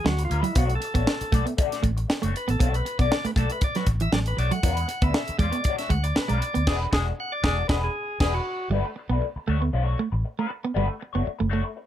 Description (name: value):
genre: funk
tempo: 118 BPM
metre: 4/4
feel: straight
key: unclear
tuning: A4 = 440 Hz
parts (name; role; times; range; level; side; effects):
- overdriven tonewheel organ; melody; 0.0-8.7 s; E4 to F#5; -30 LUFS; equal; stopped rotary speaker
- clean electric guitar; riff; 0.0-11.6 s; E3 to B3; -28 LUFS; right 6 dB; none
- vintage muted fingered electric bass; bass; 0.0-11.6 s; E1 to E2; -25 LUFS; equal; none
- tight funk drum kit; drums; 0.1-8.4 s; crash cymbal, hi-hat, kick drum, snare drum; -25 LUFS; equal; none
- electric guitar through a small old amp; accompaniment; 0.2-11.8 s; G#3 to D5; -31 LUFS; left 6 dB; wah
- warm tenor saxophone; second line; 6.7-8.3 s; G#4; -32 LUFS; left 1 dB; none
room: little or no reverb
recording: none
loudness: -22 LUFS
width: side -11 dB against mid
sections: 0.0-8.7 A section; 8.7-11.9 B section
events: tonewheel organ solo 0.0-8.7; band accent 6.7-8.7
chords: 0.0 E9; 0.6 Bm9; 4.6 E9; 8.7 Gmaj9 (rootless)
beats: 0.05 | 0.56 1.07 1.58 2.09 | 2.60 3.11 3.62 4.13 | 4.64 5.15 5.66 6.17 | 6.68 7.19 7.70 8.21 | 8.72 9.23 9.74 10.25 | 10.76 11.27 11.78